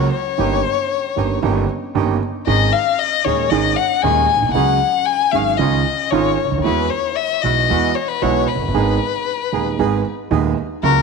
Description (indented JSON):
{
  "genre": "tango",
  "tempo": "115 BPM",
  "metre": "4/4",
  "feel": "rubato",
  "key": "unclear",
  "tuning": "A4 = 435 Hz",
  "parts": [
    { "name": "warm violin", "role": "second line", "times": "0.0-11.0 s", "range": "A#4 to G#5", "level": "-18 LUFS", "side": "left 12 dB", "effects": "none" },
    { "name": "dark concert grand piano", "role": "accompaniment", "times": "0.0-11.0 s", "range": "D#1 to G#4", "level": "-20 LUFS", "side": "right 8 dB", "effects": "none" },
    { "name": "bandoneon", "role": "stabs", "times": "0.0-11.0 s", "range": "G#3 to G#4", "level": "-29 LUFS", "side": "right 10 dB", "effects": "none" },
    { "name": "upright bass", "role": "bass", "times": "0.0-11.0 s", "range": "E#1 to E2", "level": "-23 LUFS", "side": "left 1 dB", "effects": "none" }
  ],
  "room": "moderate plate reverb, RT60 2.7 s",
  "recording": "1960s-style stereo with parts hard left and right",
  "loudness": "-15 LUFS",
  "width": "side -4 dB against mid",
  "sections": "0.0-11.0 A section",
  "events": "violin solo 0.0-11.0",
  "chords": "0.4 D#7/G; 2.5 G#sus4; 4.6 C#sus4; 5.6 C#add9; 6.7 Eadd9; 8.8 G#m"
}